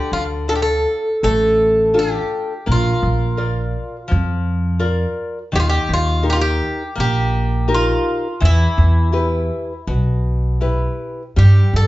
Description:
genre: fado-style ballad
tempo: 83 BPM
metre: 4/4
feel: rubato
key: unclear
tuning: A4 = 440 Hz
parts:
  - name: Irish bouzouki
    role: melody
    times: 0.0-11.9 s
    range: E4 to A4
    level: -20 LUFS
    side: equal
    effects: none
  - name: nylon-string guitar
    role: accompaniment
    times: 0.0-11.9 s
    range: B2 to D5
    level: -23 LUFS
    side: left 3 dB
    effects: none
  - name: upright bass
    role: bass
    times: 0.1-11.9 s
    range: A1 to G2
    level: -16 LUFS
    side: equal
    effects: none
room: moderate large studio reverb, RT60 0.8 s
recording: band playing live in one room, nothing above 7.8 kHz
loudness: -15 LUFS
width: side -17 dB against mid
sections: 0.0-11.9 A section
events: none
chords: 0.0 Dm; 2.7 Bb; 5.5 Eb; 8.4 Em

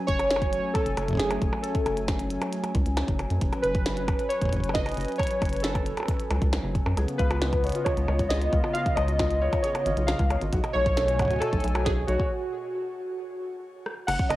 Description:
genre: IDM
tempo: 135 BPM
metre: 4/4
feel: straight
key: F# melodic minor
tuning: A4 = 439 Hz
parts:
  - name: hollow soft pad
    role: sustained chords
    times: 0.0-14.4 s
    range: B2 to G#5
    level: -32 LUFS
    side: equal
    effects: chorus, sidechain pumping, cassette tape, shimmer reverb
  - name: warbly lo-fi synth keys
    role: melody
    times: 0.1-14.4 s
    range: F#4 to F#5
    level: -29 LUFS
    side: equal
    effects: chorus, cassette tape, tape echo, shimmer reverb
  - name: rubbery square bass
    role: bass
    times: 0.1-14.4 s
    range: F#1 to F#2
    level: -28 LUFS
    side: equal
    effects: transformer saturation
  - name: electronic kick drum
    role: drums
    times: 0.1-14.3 s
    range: none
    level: -28 LUFS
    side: equal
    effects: cassette tape
  - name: glitchy drum kit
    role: drums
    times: 0.1-14.4 s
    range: crash cymbal, hi-hat, percussion blips, rim click, snare drum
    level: -33 LUFS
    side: equal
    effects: cassette tape
  - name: felt-muted upright piano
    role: arpeggios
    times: 7.0-12.3 s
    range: E#4 to F#5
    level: -34 LUFS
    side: left 2 dB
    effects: cassette tape, tape echo, shimmer reverb
room: moderate studio reverb, RT60 0.5 s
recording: home recording on cassette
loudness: -24 LUFS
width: side -16 dB against mid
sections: 0.0-14.1 A section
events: break 12.3-14.1; drum fill 13.9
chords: 0.0 F#madd9; 7.0 C#9; 10.5 B13

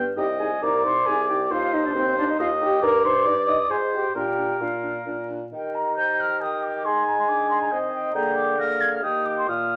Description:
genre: quick classical-period movement for wind quintet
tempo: 136 BPM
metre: 3/4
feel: rubato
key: Eb major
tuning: A4 = 440 Hz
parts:
  - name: mellow oboe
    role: second line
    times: 0.0-9.8 s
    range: Bb4 to Bb5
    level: -27 LUFS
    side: equal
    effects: none
  - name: clear clarinet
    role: accompaniment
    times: 0.0-9.8 s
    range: D4 to C5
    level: -36 LUFS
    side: equal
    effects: none
  - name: mellow bassoon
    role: bass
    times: 0.0-9.8 s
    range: C2 to Eb3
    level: -30 LUFS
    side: equal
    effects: none
  - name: mellow concert flute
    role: melody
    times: 0.2-9.8 s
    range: C5 to Bb6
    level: -30 LUFS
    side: equal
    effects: none
  - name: clear French horn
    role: accompaniment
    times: 0.2-9.8 s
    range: Bb3 to Eb5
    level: -30 LUFS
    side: equal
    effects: none
room: moderate large studio reverb, RT60 1.0 s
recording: vinyl crackle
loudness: -23 LUFS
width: mono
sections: 0.0-5.5 A section; 5.5-9.8 B section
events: none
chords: 0.2 Cm; 1.5 Cm/Eb; 2.8 Eb/G; 3.7 Fm/Ab; 4.2 Bb; 5.5 Eb; 6.9 Ab/Eb; 8.2 Bb7/D; 9.0 Eb

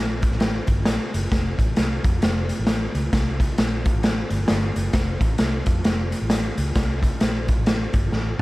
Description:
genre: uptempo 1960s-style soul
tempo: 132 BPM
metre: 4/4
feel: swing 60% on 8ths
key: F major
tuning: A4 = 440 Hz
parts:
  - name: vintage muted fingered electric bass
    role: bass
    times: 0.0-8.4 s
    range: F1 to F2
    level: -25 LUFS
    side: equal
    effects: none
  - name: raw garage drum kit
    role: drums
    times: 0.2-8.4 s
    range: hi-hat, kick drum, snare drum, toms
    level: -20 LUFS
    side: equal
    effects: none
room: light reverb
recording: none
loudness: -19 LUFS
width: side -19 dB against mid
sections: 0.0-8.4 A section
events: drum fill 8.1-8.4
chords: none

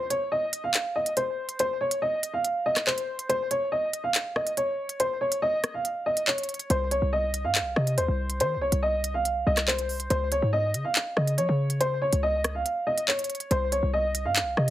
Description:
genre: hip hop, drill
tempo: 141 BPM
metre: 4/4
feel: half-time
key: C phrygian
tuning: A4 = 439 Hz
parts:
  - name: warm baby grand piano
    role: melody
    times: 0.0-14.7 s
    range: C5 to F5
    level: -26 LUFS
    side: equal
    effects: low-pass filter, slapback echo
  - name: drill drum kit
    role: drums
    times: 0.1-14.7 s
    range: handclaps, hi-hat, rim click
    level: -27 LUFS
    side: equal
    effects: none
  - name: short 808-style bass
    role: bass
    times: 6.7-14.7 s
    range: C2 to F3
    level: -27 LUFS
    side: equal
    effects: none
room: moderate studio reverb, RT60 0.6 s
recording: heavily compressed radio sound, multiband compression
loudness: -24 LUFS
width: side -13 dB against mid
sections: 0.0-14.7 A section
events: break 0.0-6.7; kick muted 12.7-13.5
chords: 0.0 N.C.; 6.7 Cm; 10.1 N.C.; 13.5 Cm

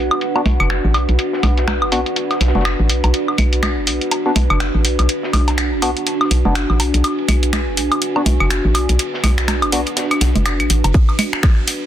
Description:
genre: minimal techno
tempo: 123 BPM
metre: 4/4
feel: swing 59% on 16ths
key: B dorian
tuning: A4 = 439 Hz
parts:
  - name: hollow knocking FM bass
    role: bass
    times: 0.0-10.9 s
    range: F#1 to B1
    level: -17 LUFS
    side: equal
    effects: tube saturation, sidechain pumping
  - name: deep dark ambient pad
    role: texture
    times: 0.0-11.9 s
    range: D4 to G#5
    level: -21 LUFS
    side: right 1 dB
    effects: chorus, built-in reverb, sidechain pumping
  - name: house drum kit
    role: drums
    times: 0.1-11.8 s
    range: finger snaps, hi-hat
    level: -21 LUFS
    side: equal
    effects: low-pass filter on hats, soft clipping on snare, low-pass filter on snare, low-pass filter on room
  - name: woodblock, congas and claves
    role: percussion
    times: 0.1-11.5 s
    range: none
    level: -21 LUFS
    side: right 1 dB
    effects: tape echo
  - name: modern studio drum kit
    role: drums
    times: 0.2-11.8 s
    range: ride cymbal, snare drum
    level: -33 LUFS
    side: right 2 dB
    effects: sidechain pumping on cymbals, high-pass filter on cymbals, low-pass filter on cymbals, soft clipping on snare, high-pass filter on snare, low-pass filter on snare, high-pass filter on room, low-pass filter on room
  - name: percussive organ stab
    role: stabs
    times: 0.4-9.8 s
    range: B3 to F#4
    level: -23 LUFS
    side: left 2 dB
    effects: chorus, vintage 12-bit sampler grit, tape echo
  - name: electronic kick drum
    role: drums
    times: 10.9-11.5 s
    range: none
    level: -13 LUFS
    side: equal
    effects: none
room: light reverb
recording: dense, heavily limited modern master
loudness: -14 LUFS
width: side -11 dB against mid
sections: 0.0-10.9 A section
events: none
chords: 0.0 Bm

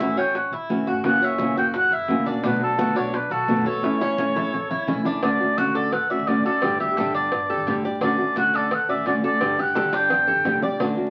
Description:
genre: latin, Cuban son and guajira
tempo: 172 BPM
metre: 4/4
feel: straight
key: D major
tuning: A4 = 440 Hz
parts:
  - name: warm oboe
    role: melody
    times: 0.0-10.6 s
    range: A4 to G5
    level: -25 LUFS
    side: equal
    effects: none
  - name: nylon-string guitar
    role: accompaniment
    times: 0.0-11.1 s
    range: B2 to G4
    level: -27 LUFS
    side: equal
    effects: none
  - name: Cuban tres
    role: arpeggios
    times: 0.0-11.1 s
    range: C#4 to D5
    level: -32 LUFS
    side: equal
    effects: none
  - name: upright bass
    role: bass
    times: 0.0-11.1 s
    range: F#1 to F#2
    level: -41 LUFS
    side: equal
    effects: none
  - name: bongos and cowbell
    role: percussion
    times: 0.0-11.0 s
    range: none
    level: -34 LUFS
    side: equal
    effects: none
  - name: congas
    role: percussion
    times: 0.0-11.1 s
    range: none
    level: -34 LUFS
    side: equal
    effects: none
room: wet studio ambience, RT60 0.5 s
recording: very old 78 rpm record, vinyl crackle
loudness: -22 LUFS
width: mono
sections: 0.0-5.2 A section; 5.2-11.1 B section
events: drum fill 3.8-5.2, 9.8-10.8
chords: 0.0 A6; 1.0 F#7; 2.4 Bm7; 3.8 A; 5.2 Dmaj7; 6.6 Gsus2; 8.0 Dmaj7; 9.4 Gsus2

